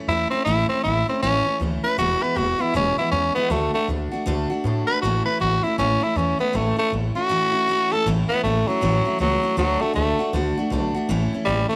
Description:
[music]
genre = rockabilly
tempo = 158 BPM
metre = 4/4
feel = swing 62% on 8ths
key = A major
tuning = A4 = 443 Hz
[part]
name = picked steel-string acoustic guitar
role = accompaniment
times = 0.0-11.8 s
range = E2 to F#4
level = -28 LUFS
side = equal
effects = none
[part]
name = raspy tenor saxophone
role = melody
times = 0.1-11.8 s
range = F#3 to B4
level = -23 LUFS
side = equal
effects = none
[part]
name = upright bass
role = bass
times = 0.1-11.7 s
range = E1 to A2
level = -28 LUFS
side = equal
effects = none
[sound]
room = light reverb, small room ambience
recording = none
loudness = -22 LUFS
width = mono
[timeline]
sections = 0.0-8.1 A section; 8.1-11.8 B section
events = tenor saxophone solo 8.1-11.8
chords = 0.0 A; 2.0 E; 3.5 D; 5.0 A; 9.6 D; 11.1 A

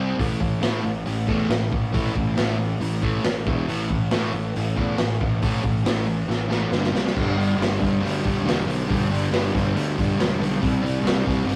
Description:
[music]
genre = garage rock duo or trio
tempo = 138 BPM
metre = 4/4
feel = straight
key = unclear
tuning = A4 = 440 Hz
[part]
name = fuzz guitar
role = riff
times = 0.0-11.6 s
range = E2 to C4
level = -26 LUFS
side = equal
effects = distortion
[part]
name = fuzz fingered electric bass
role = bass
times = 0.0-11.6 s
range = E1 to A2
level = -29 LUFS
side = equal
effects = overdrive, tube saturation
[part]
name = crunchy breakbeat drum kit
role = drums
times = 0.2-11.6 s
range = crash cymbal, hi-hat, kick drum, snare drum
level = -28 LUFS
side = equal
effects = none
[sound]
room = moderate small room reverb, RT60 0.5 s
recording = rough rehearsal-room recording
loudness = -23 LUFS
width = mono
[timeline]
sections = 0.0-7.2 A section; 7.2-11.6 B section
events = drum fill 6.3-7.2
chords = 0.2 A5; 3.5 E5; 3.7 A5; 6.7 G5; 6.9 C5; 7.2 G5; 10.6 C5

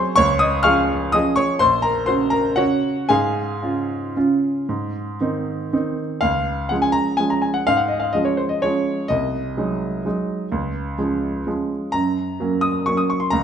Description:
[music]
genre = classical, piano waltz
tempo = 112-134 BPM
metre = 3/4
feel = rubato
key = Db major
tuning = A4 = 440 Hz
[part]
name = clear baby grand piano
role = solo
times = 0.0-13.4 s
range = Bb1 to F6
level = -18 LUFS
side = equal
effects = none
[sound]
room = moderate recital hall reverb, RT60 1.5 s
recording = none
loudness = -18 LUFS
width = side -8 dB against mid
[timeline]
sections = 0.0-6.2 A section; 6.2-13.4 B section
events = none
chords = 0.2 Db; 1.6 Gb/Bb; 3.1 Db/Ab; 4.7 Ab; 6.2 Db; 9.1 Ab7/C; 10.5 Db; 11.9 Gb

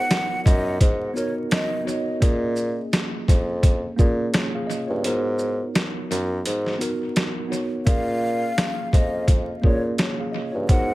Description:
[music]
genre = hip hop, boom-bap hip-hop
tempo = 85 BPM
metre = 4/4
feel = swing 57% on 16ths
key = unclear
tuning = A4 = 440 Hz
[part]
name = breathy mellow concert flute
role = melody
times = 0.0-1.8, 7.9-10.9 s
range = C#5 to F#5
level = -28 LUFS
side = equal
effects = analog delay
[part]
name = mellow tine electric piano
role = accompaniment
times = 0.0-10.9 s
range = A#3 to E#5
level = -28 LUFS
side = right 1 dB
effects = medium stereo tremolo, cassette tape
[part]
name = boom bap sampler-style drum kit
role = drums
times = 0.1-10.9 s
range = hi-hat, kick drum, shaker, snare drum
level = -20 LUFS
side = equal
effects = analog delay
[part]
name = mellow bassoon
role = bass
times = 0.5-10.9 s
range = E#2 to A#2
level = -25 LUFS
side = equal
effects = none
[sound]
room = little or no reverb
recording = echo-heavy mix, vinyl crackle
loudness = -20 LUFS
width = side -18 dB against mid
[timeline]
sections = 0.0-7.9 A section; 7.9-10.9 B section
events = break 5.0-7.9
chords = 0.0 G#m7; 2.2 A#m7; 5.0 G#m7; 7.9 A#m7

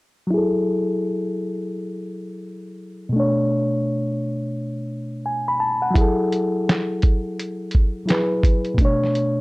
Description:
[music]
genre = lo-fi hip hop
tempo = 85 BPM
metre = 4/4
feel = swing 63% on 16ths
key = F# minor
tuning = A4 = 440 Hz
[part]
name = reed electric piano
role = accompaniment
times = 0.3-9.4 s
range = B2 to B5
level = -21 LUFS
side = left 1 dB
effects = low-pass filter, plate reverb
[part]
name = lo-fi sampler-style drum kit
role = drums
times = 6.0-9.4 s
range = handclaps, hi-hat, kick drum, snare drum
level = -18 LUFS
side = equal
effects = none
[sound]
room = light reverb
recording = none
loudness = -19 LUFS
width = side -22 dB against mid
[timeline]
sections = 0.3-9.4 A section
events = filter sweep on reed electric piano 0.3-9.4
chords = 0.3 F#m9; 3.1 Bm9; 6.0 F#m9; 8.8 Bm9

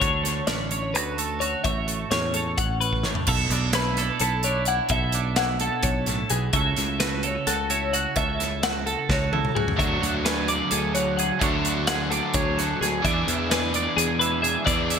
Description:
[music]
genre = math rock and midwest emo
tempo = 258 BPM (eighths)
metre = 7/8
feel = straight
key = unclear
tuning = A4 = 440 Hz
[part]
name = twelve-string electric guitar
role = accompaniment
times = 0.0-15.0 s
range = A2 to D5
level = -27 LUFS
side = right 8 dB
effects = analog chorus
[part]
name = twelve-string electric guitar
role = arpeggios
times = 0.0-15.0 s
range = G#4 to F#5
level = -27 LUFS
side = left 5 dB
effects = phaser, ping-pong delay
[part]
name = fingered electric bass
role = bass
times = 0.0-15.0 s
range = A1 to E2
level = -29 LUFS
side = left 1 dB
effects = none
[part]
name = modern studio drum kit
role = drums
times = 0.0-15.0 s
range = crash cymbal, hi-hat, kick drum, snare drum, toms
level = -27 LUFS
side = equal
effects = gated reverb
[part]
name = biting overdriven guitar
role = riff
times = 9.8-15.0 s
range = D3 to G#4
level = -27 LUFS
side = left 1 dB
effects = none
[sound]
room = moderate plate reverb, RT60 1.6 s, small room ambience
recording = bright 1980s-style digital production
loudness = -21 LUFS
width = side -7 dB against mid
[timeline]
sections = 0.0-3.3 A section; 3.3-15.0 B section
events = drum fill 2.9-3.3, 9.1-9.8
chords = 0.0 Dmaj7; 1.6 A6; 3.3 Bm11; 6.5 F#m7/C#; 9.8 Dmaj9#11; 13.0 E7

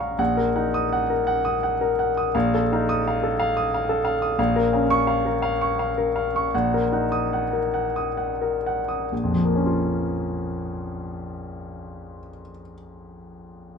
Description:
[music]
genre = classical, romantic character piece for solo piano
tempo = 59-93 BPM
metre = 3/4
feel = rubato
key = Bb minor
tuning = A4 = 440 Hz
[part]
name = clear grand piano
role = solo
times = 0.0-13.8 s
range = Bb1 to Eb6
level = -21 LUFS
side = left 1 dB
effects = none
[sound]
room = light reverb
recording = dark, warm production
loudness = -21 LUFS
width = side -6 dB against mid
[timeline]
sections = 0.2-9.1 A section; 9.1-13.8 B section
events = slowing down 3.4-9.1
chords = 0.2 Ebm/Bb; 2.3 F7/Bb; 4.4 Bbm; 6.5 Ebm/Bb; 9.1 Bbm

